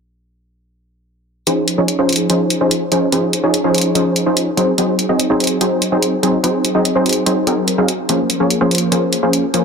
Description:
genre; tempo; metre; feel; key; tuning
future bass; 145 BPM; 4/4; half-time; Db major; A4 = 443 Hz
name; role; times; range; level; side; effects
supersaw stab; riff; 1.5-9.6 s; F3 to F5; -14 LUFS; equal; low-pass filter, tape echo
electronic hi-hat; drums; 1.5-9.6 s; none; -20 LUFS; equal; none
room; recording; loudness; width
moderate huge ambient reverb, RT60 4.3 s; dense, heavily limited modern master, faint mains hum; -13 LUFS; side -6 dB against mid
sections
1.5-9.6 A section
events
none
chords
1.5 Dbmaj9; 4.6 Ab7; 8.1 Bbm9

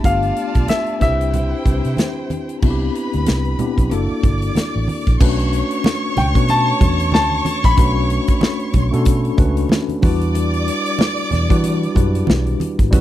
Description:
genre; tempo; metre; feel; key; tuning
lush 1970s-style soul; 93 BPM; 4/4; swing 58% on 16ths; unclear; A4 = 440 Hz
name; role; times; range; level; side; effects
rich studio violin section; second line; 0.0-13.0 s; E4 to E6; -26 LUFS; right 1 dB; none
mellow tine electric piano; accompaniment; 0.0-13.0 s; G3 to C#5; -22 LUFS; left 2 dB; medium stereo tremolo
vintage muted fingered electric bass; bass; 0.0-13.0 s; F#1 to E3; -19 LUFS; equal; none
modern studio drum kit; drums; 0.0-13.0 s; crash cymbal, hi-hat, kick drum, snare drum; -17 LUFS; equal; none
congas; percussion; 0.0-13.0 s; none; -26 LUFS; right 4 dB; none
warm grand piano; melody; 0.1-1.9, 6.2-10.0 s; E5 to B5; -22 LUFS; left 3 dB; none
room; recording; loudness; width
studio reverb; dry, close 1970s-style studio recording; -15 LUFS; side -13 dB against mid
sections
0.0-2.6 A section; 2.6-5.2 B section; 5.2-13.0 C section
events
none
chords
0.0 G7; 1.0 Cmaj7; 3.9 F#7alt; 5.2 Bm9; 10.0 Em9

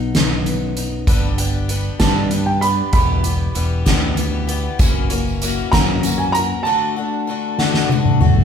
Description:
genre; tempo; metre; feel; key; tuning
indie folk with a building arrangement; 64 BPM (dotted quarters); 6/8; straight; unclear; A4 = 440 Hz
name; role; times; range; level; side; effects
dark upright piano; melody; 0.0-8.2 s; F#5 to B5; -21 LUFS; right 4 dB; none
fingerpicked steel-string acoustic guitar; accompaniment; 0.0-1.0 s; F#2 to D#4; -24 LUFS; left 3 dB; none
fingered electric bass; bass; 0.0-6.5 s; E1 to G2; -21 LUFS; equal; none
soft-mallet drum kit; drums; 0.1-8.4 s; hi-hat, kick drum, snare drum, toms; -17 LUFS; equal; none
picked twelve-string acoustic guitar; accompaniment; 1.1-8.4 s; E2 to G4; -23 LUFS; left 6 dB; none
tambourine; percussion; 4.8-6.2 s; none; -30 LUFS; right 5 dB; none
room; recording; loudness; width
moderate large studio reverb, RT60 1.0 s; band playing live in one room; -15 LUFS; side -7 dB against mid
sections
0.0-1.1 A section; 1.1-8.4 B section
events
drum fill 7.6-8.4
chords
0.0 B; 1.1 G; 2.9 Em; 4.8 F#7; 6.7 D

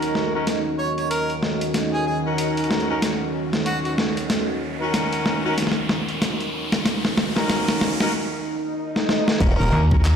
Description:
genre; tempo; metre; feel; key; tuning
glitch hop; 94 BPM; 4/4; swing 59% on 16ths; Eb minor; A4 = 440 Hz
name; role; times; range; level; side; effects
warm analog pad; sustained chords; 0.0-10.2 s; Eb3 to Gb4; -29 LUFS; right 1 dB; chorus, sidechain pumping
warm horn section; stabs; 0.0-10.2 s; Db4 to Bb4; -26 LUFS; left 1 dB; sidechain pumping, low-pass filter, ping-pong delay
boom bap sampler-style drum kit; drums; 0.0-10.2 s; crash cymbal, handclaps, hi-hat, snare drum; -23 LUFS; equal; none
riser and swell; sound effects; 1.0-9.4 s; none; -31 LUFS; left 1 dB; none
deep dark ambient pad; texture; 0.0-10.2 s; Eb4 to Eb5; -30 LUFS; right 2 dB; chorus, built-in reverb, sidechain pumping
warm harmonica; melody; 0.8-3.9, 9.6-9.8 s; Gb4 to Db5; -28 LUFS; equal; ping-pong delay
growl bass; bass; 9.4-9.7 s; Eb1; -20 LUFS; equal; chorus
electronic kick drum; drums; 9.4-10.0 s; none; -19 LUFS; equal; overdrive
slap-like FM bass; bass; 9.7-10.2 s; Eb2; -16 LUFS; equal; none
room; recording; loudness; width
moderate lush hall reverb, RT60 2.1 s; played on a big sound system in a bare room, large studio reverb; -20 LUFS; side -7 dB against mid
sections
0.0-9.4 A section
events
build-up 0.0-9.4; drum fill 0.0-8.1, 8.9-9.4; riser 1.0-8.1; break 8.1-9.4; swell 8.1-9.4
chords
0.0 Ebm7

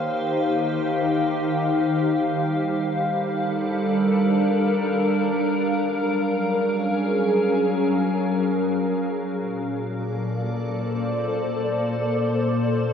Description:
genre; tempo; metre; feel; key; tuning
ambient; free time; none; none; unclear; A4 = 441 Hz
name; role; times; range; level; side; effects
glassy FM pad; solo; 0.0-12.9 s; Bb2 to F5; -20 LUFS; equal; ensemble chorus, built-in reverb, diffuse ambient delay
room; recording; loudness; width
wet huge ambient reverb, RT60 7.8 s; dreamy mix soaked in reverb, cassette tape; -20 LUFS; side -7 dB against mid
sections
0.0-12.9 A section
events
none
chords
0.0 Eb6; 2.3 Gm7; 5.9 Gbmaj7; 9.4 Bbmaj7

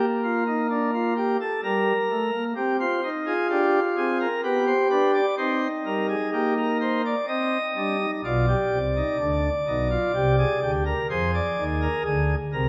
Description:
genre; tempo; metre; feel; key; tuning
classical, baroque-style 4-part fugue for pipe organ; 63 BPM; 3/4; straight; C minor; A4 = 440 Hz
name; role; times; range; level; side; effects
pipe organ, sparkling flutes; solo; 0.0-12.7 s; B1 to Eb5; -24 LUFS; equal; none
room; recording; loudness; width
wet scoring stage reverb, RT60 1.7 s; none; -24 LUFS; mono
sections
0.0-8.2 A section; 8.2-12.7 B section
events
none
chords
0.0 Gm/Bb; 1.6 Gm; 2.6 Cm; 4.4 G/B; 5.4 Cm; 8.2 G7/B; 10.2 C5; 11.1 Ddim

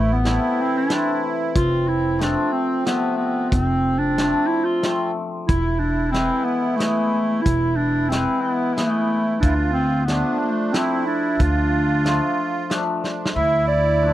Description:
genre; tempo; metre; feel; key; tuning
klezmer; 92 BPM; 3/4; straight; D dorian sharp4; A4 = 440 Hz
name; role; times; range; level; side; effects
mellow clarinet; melody; 0.0-14.1 s; A3 to E5; -21 LUFS; equal; none
accordion; second line; 0.0-14.1 s; C4 to F4; -27 LUFS; right 7 dB; light tremolo tuning
cimbalom; accompaniment; 0.0-14.1 s; C3 to B4; -26 LUFS; left 4 dB; none
upright bass; bass; 0.0-14.1 s; E1 to D2; -22 LUFS; equal; none
warm soul drum kit; drums; 0.3-13.4 s; hi-hat, kick drum, snare drum; -23 LUFS; equal; none
room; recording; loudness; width
light reverb; dry, close 1970s-style studio recording; -18 LUFS; side -13 dB against mid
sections
0.0-13.4 A section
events
drum fill 13.0-13.4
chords
0.0 Am; 1.6 F; 5.5 E; 9.4 Dm

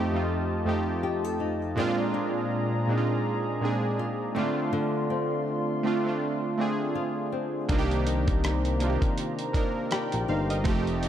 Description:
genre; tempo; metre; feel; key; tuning
contemporary R&B; 81 BPM; 4/4; swing 58% on 16ths; C minor; A4 = 438 Hz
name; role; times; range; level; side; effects
warm analog keys; accompaniment; 0.0-11.1 s; F2 to G5; -28 LUFS; right 2 dB; chorus
warm analog pad; sustained chords; 0.0-11.1 s; Eb3 to C6; -33 LUFS; equal; chorus
nylon-string guitar; arpeggios; 0.0-11.1 s; Bb2 to A4; -33 LUFS; left 5 dB; ping-pong delay
fat analog bass; bass; 7.7-11.1 s; F1 to C2; -28 LUFS; equal; none
dusty soul sampler-style drum kit; drums; 7.7-11.1 s; hi-hat, kick drum, rim click; -28 LUFS; equal; none
room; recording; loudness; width
light reverb; dark, warm production; -25 LUFS; side -10 dB against mid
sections
0.0-11.1 A section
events
none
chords
0.0 F7; 1.8 Bb7; 4.4 Dm7; 7.7 Cm7

